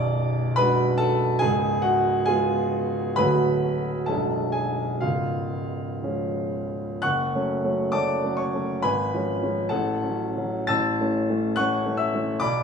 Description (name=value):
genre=classical, romantic character piece for solo piano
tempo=58-72 BPM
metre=2/4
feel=rubato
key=F# minor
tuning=A4 = 440 Hz
part: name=warm concert grand piano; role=solo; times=0.0-12.6 s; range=B0 to A6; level=-22 LUFS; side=equal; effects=none
room=wet recital hall reverb, RT60 1.5 s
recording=studio ambience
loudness=-22 LUFS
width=side -6 dB against mid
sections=0.0-7.0 A section; 7.0-12.6 B section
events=none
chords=0.0 G#m7b5/B; 1.4 C#7; 3.2 D; 4.1 G#m7b5/B; 5.0 C#; 7.0 F#m; 8.8 C#7/G#; 9.7 F#m/A; 10.7 A